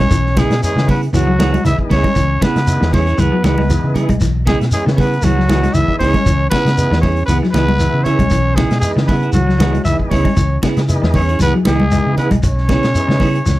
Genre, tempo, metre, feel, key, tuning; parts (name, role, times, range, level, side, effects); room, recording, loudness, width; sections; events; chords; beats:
afrobeat; 117 BPM; 4/4; swing 53% on 16ths; C# minor; A4 = 435 Hz
growling trumpet; melody; 0.0-13.6 s; F#4 to E5; -20 LUFS; equal
warm trombone; second line; 0.0-13.6 s; F#3 to E4; -24 LUFS; right 3 dB
semi-hollow electric guitar; arpeggios; 0.0-13.6 s; C#3 to G#3; -21 LUFS; left 4 dB; spring reverb
fingered electric bass; bass; 0.0-13.6 s; B1 to C#3; -16 LUFS; equal
vintage drum kit; drums; 0.0-13.6 s; hi-hat, kick drum, snare drum; -20 LUFS; equal
congas; percussion; 0.0-13.3 s; -20 LUFS; right 1 dB
shekere; percussion; 0.1-13.6 s; -21 LUFS; equal
semi-hollow electric guitar; stabs; 0.4-13.4 s; B3 to G#4; -22 LUFS; right 5 dB
tonewheel organ; accompaniment; 0.5-13.3 s; E3 to E4; -24 LUFS; equal; slow rotary speaker
little or no reverb; -12 LUFS; side -16 dB against mid
0.0-13.6 A section
0.0 C#m7
| 0.11 0.62 1.14 1.65 | 2.16 2.67 3.19 3.70 | 4.21 4.72 5.24 5.75 | 6.26 6.77 7.29 7.80 | 8.31 8.83 9.34 9.86 | 10.37 10.89 11.40 11.92 | 12.43 12.95 13.46